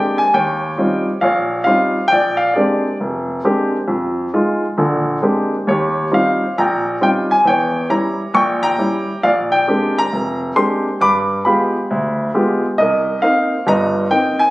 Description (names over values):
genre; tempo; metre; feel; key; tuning
solo jazz; 135 BPM; 4/4; swing 66% on 8ths; Bb mixolydian; A4 = 440 Hz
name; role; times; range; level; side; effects
warm grand piano; solo; 0.0-14.5 s; F1 to D6; -14 LUFS; equal; none
room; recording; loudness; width
moderate large studio reverb, RT60 1.2 s; recorded on a phone in the room, club reverb; -14 LUFS; side -19 dB against mid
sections
0.0-14.5 A section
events
none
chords
0.3 Eb13; 2.1 Bb13; 3.9 Fm7; 4.8 Bb13; 5.7 Eb13; 7.5 Edim7; 9.2 Bb13; 11.0 G7b9; 12.8 Cm7